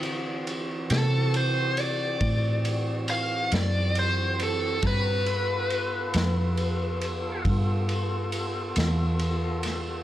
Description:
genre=slow blues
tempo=46 BPM (dotted quarters)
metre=12/8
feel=straight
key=D mixolydian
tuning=A4 = 440 Hz
part: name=tonewheel organ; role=sustained chords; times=0.0-10.0 s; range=E3 to Bb5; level=-33 LUFS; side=equal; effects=slow rotary speaker
part: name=vintage muted fingered electric bass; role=bass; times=0.0-10.0 s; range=E2 to D3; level=-27 LUFS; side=equal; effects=none
part: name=vintage drum kit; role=drums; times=0.0-9.8 s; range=kick drum, ride cymbal, snare drum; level=-32 LUFS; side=equal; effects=none
part: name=dark smooth lead guitar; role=melody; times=0.9-7.4 s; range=A4 to F5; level=-28 LUFS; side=equal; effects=overdrive, plate reverb
room=moderate club reverb, RT60 0.5 s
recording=none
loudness=-24 LUFS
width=side -13 dB against mid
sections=0.0-10.0 A section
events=lead electric guitar solo 0.0-10.0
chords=0.0 D9; 4.8 G9

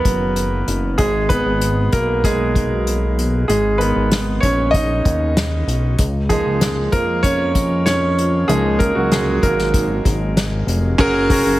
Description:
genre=piano-driven pop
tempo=96 BPM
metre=4/4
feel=straight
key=unclear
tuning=A4 = 441 Hz
part: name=clear concert grand piano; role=accompaniment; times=0.0-11.6 s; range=D#3 to D#5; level=-18 LUFS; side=right 1 dB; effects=none
part: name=chorused synth bass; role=bass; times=0.1-11.6 s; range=E#1 to E#2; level=-20 LUFS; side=equal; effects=none
part: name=unplugged drum kit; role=drums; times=0.1-11.4 s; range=crash cymbal, hi-hat, kick drum, snare drum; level=-20 LUFS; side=left 1 dB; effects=none
room=light reverb, small room ambience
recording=heavily compressed radio sound, multiband compression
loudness=-15 LUFS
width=side -16 dB against mid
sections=0.0-11.0 A section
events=grand piano solo 0.0-11.0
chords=0.0 B; 1.0 G#madd9; 6.0 C#6; 11.0 F#add9

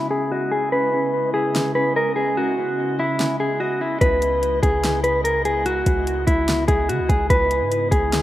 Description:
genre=hip hop, atmospheric cloud-rap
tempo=146 BPM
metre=4/4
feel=half-time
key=C# minor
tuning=A4 = 440 Hz
part: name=mellow electric guitar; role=melody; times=0.0-8.2 s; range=E4 to B4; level=-20 LUFS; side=equal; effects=spring reverb, low-pass filter, ping-pong delay
part: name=glassy FM pad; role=sustained chords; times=0.0-8.2 s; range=C#3 to D#5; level=-29 LUFS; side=left 2 dB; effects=ensemble chorus, built-in reverb, sidechain pumping, low-pass filter
part: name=concert harp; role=arpeggios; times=0.0-6.4 s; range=C#4 to D#5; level=-29 LUFS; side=equal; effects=low-pass filter, ping-pong delay
part: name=smooth R&B drum kit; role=drums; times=1.6-8.2 s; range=hi-hat, kick drum, snare drum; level=-22 LUFS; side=equal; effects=overdrive
part: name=warm 808-style bass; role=bass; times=4.0-8.2 s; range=C#2 to C#3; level=-25 LUFS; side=equal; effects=none
room=light reverb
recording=rough home demo mix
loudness=-18 LUFS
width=side -14 dB against mid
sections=0.0-4.0 A section; 4.0-8.2 B section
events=filter sweep 0.0-4.0; break 2.4-4.0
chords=0.0 C#m9

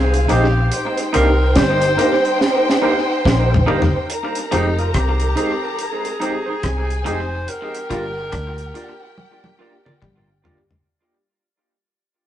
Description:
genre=lovers rock reggae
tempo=71 BPM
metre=4/4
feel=swing 61% on 16ths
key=unclear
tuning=A4 = 440 Hz
part: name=warm tenor saxophone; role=melody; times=0.0-10.0 s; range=Eb4 to C5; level=-23 LUFS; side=equal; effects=none
part: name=warm studio string section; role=second line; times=0.0-10.8 s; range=C4 to Bb5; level=-22 LUFS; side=equal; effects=none
part: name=twangy electric guitar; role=riff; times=0.0-10.3 s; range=F3 to D4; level=-30 LUFS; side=left 4 dB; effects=tape echo
part: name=vintage muted fingered electric bass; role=bass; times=0.0-10.8 s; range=F1 to D2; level=-19 LUFS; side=equal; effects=none
part: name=electric guitar through a small old amp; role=stabs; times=0.1-10.6 s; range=Eb4 to D5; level=-26 LUFS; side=right 3 dB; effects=spring reverb, tape echo
part: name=deep reggae drum kit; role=drums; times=0.1-10.9 s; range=hi-hat, kick drum, rim click, snare drum, toms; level=-21 LUFS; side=equal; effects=tape echo
part: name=overdriven tine electric piano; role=accompaniment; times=0.3-10.6 s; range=Ab3 to G4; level=-25 LUFS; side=equal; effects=medium tremolo, tape echo
room=wet studio reverb, RT60 0.5 s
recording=rough rehearsal-room recording, nothing above 10.8 kHz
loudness=-16 LUFS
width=side -11 dB against mid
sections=0.0-4.1 A section; 4.1-10.9 B section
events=drum fill 2.4-4.1, 9.2-10.9; fade-out 4.1-10.9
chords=0.0 Fm7; 0.7 Cm7; 4.1 Fm7; 7.5 Gm7

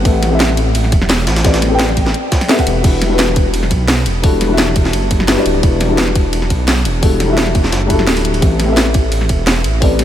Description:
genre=liquid drum and bass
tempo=172 BPM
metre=4/4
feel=straight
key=E minor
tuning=A4 = 440 Hz
part: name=felt-muted upright piano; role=accompaniment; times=0.0-10.0 s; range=G3 to G5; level=-17 LUFS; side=left 3 dB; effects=diffuse ambient delay
part: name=dark detuned saw bass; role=bass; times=0.0-10.0 s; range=D1 to B1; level=-16 LUFS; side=equal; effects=none
part: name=electronic kick drum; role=drums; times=0.1-9.9 s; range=none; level=-14 LUFS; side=equal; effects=none
part: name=garage drum kit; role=drums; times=0.1-10.0 s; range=crash cymbal, hi-hat, snare drum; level=-17 LUFS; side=equal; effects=none
part: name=jungle sampler-style drum kit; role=drums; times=0.1-10.0 s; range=hi-hat, ride cymbal, snare drum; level=-24 LUFS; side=right 1 dB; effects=high-pass filter on cymbals, high-pass filter on snare, high-pass filter on hats
room=light reverb, digital ambience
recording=none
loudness=-11 LUFS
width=side -11 dB against mid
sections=0.0-2.8 A section; 2.8-10.0 A section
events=drop 0.0-2.8, 2.8-10.0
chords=0.0 Am9; 2.8 Em9; 8.4 Am9

